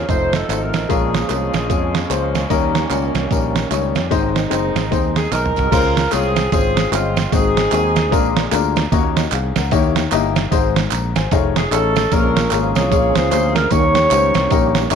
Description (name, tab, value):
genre	uptempo gospel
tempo	150 BPM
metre	4/4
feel	swing 61% on 8ths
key	Db major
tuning	A4 = 440 Hz
part	dark saxophone section	melody	0.0-2.3, 5.2-8.8, 11.6-14.9 s	Ab3 to Db5	-19 LUFS	equal	none
part	muted French horn section	sustained chords	0.0-5.7 s	Eb3 to Eb4	-29 LUFS	left 1 dB	none
part	percussive tonewheel organ	sustained chords	0.0-5.9, 12.1-15.0 s	Eb3 to F5	-26 LUFS	right 11 dB	fast rotary speaker, chorus vibrato
part	fingered electric bass	bass	0.0-15.0 s	F1 to F2	-22 LUFS	equal	none
part	warm upright piano	accompaniment	0.1-15.0 s	Ab2 to Bb5	-20 LUFS	left 12 dB	none
part	trip hop sampler-style drum kit	drums	0.1-15.0 s	crash cymbal, hi-hat, kick drum, snare drum, toms	-20 LUFS	right 4 dB	none
part	tambourine and handclaps	percussion	0.1-15.0 s	none	-29 LUFS	right 13 dB	none
room	wet spring reverb, RT60 1.8 s, studio reverb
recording	1960s-style stereo with parts hard left and right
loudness	-14 LUFS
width	side -7 dB against mid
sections	0.0-5.7 A section; 5.7-15.0 B section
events	tonewheel organ fill 1.7-2.5; drum fill 5.3-5.7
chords	0.1 F7; 0.9 Bbm7; 2.5 Eb7; 4.1 Ab; 5.7 Dbmaj7; 7.3 Ab7; 8.1 Bb7; 8.9 Ebm7; 9.7 Eb7b9; 10.5 Ab; 11.3 F7alt; 12.1 Bbm7; 13.7 Eb7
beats	0.09 0.49 | 0.89 1.30 1.70 2.10 | 2.50 2.91 3.31 3.71 | 4.11 4.51 4.92 5.32 | 5.72 6.12 6.52 6.92 | 7.32 7.72 8.12 8.52 | 8.92 9.32 9.72 10.12 | 10.52 10.92 11.32 11.72 | 12.12 12.52 12.91 13.31 | 13.71 14.11 14.51 14.91